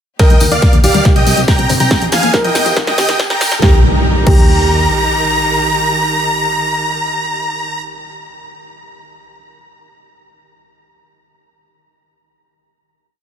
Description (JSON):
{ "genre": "uplifting trance", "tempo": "140 BPM", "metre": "4/4", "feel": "straight", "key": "Eb major", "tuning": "A4 = 441 Hz", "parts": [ { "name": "big supersaw lead", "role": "melody", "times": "0.2-7.8 s", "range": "D5 to Bb5", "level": "-16 LUFS", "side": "equal", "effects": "sidechain pumping, digital delay" }, { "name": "dark baby grand piano", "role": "second line", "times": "0.2-8.3 s", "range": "G4 to Bb4", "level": "-21 LUFS", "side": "right 1 dB", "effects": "vintage 12-bit sampler grit, digital delay" }, { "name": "rich studio string section", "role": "sustained chords", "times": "0.2-7.7 s", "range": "C3 to Bb5", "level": "-22 LUFS", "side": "right 2 dB", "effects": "sidechain pumping" }, { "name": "wide unison pluck", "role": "arpeggios", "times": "0.2-4.4 s", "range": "C2 to Bb3", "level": "-22 LUFS", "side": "left 5 dB", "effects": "none" }, { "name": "electronic kick drum", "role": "drums", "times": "0.2-4.4 s", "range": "none", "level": "-11 LUFS", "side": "equal", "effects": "none" }, { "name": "punchy analog drum machine", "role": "drums", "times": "0.2-4.4 s", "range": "crash cymbal, hi-hat, snare drum", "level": "-20 LUFS", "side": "equal", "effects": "none" }, { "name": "tambourine", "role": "percussion", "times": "0.2-3.6 s", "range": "none", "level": "-24 LUFS", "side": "left 4 dB", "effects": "none" }, { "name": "riser and impact", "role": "sound effects", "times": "1.2-7.7 s", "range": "none", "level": "-20 LUFS", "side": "equal", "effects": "none" }, { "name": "plucky analog bass", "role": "bass", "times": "0.3-4.9 s", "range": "Eb1 to F2", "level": "-18 LUFS", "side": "equal", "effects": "sidechain pumping" } ], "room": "light reverb", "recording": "high-pass filter", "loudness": "-10 LUFS", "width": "side -9 dB against mid", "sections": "0.2-3.6 build; 3.6-7.1 final chord", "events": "build-up 0.2-3.6; drum fill 0.2-3.6; filter sweep on synth arpeggio sound 0.2-3.6; filter sweep 0.2-3.6", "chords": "0.2 Eb; 1.1 Cmadd9; 1.9 Fm7; 2.8 Eb" }